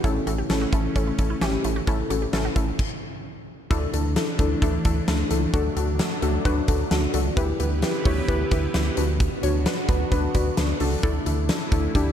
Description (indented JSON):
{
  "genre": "synth-pop",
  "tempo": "131 BPM",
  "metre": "4/4",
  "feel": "straight",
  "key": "unclear",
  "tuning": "A4 = 440 Hz",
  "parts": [
    { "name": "warbly dusty pluck", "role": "accompaniment", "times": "0.0-12.1 s", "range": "C#4 to C#5", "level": "-27 LUFS", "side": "left 2 dB", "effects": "chorus" },
    { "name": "phased analog pad", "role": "sustained chords", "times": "0.0-12.1 s", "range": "D3 to B4", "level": "-31 LUFS", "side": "equal", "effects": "phaser, chorus" },
    { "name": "wide unison pluck", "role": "arpeggios", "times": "0.0-2.7 s", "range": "C#4 to G4", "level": "-36 LUFS", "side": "right 3 dB", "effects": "phaser, ping-pong delay" },
    { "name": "round analog bass", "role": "bass", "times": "0.0-12.1 s", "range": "A1 to D2", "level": "-26 LUFS", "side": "equal", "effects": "none" },
    { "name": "huge arena drum kit", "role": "drums", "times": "0.0-12.1 s", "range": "crash cymbal, hi-hat, kick drum, snare drum", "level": "-25 LUFS", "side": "equal", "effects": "none" }
  ],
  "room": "light reverb",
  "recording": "dark, warm production",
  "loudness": "-21 LUFS",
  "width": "side -9 dB against mid",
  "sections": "0.0-3.7 A section; 3.7-12.1 B section",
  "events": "stop 2.8-3.7",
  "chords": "0.0 A; 3.7 Asus4/D; 5.5 D; 7.4 Em/D; 9.0 Bm/D; 11.0 Asus4/D",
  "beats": "| 0.04 0.50 0.96 1.42 | 1.88 2.33 2.79 3.25 | 3.71 4.17 4.62 5.08 | 5.54 6.00 6.46 6.91 | 7.37 7.83 8.29 8.74 | 9.20 9.66 10.12 10.58 | 11.04 11.49 11.95"
}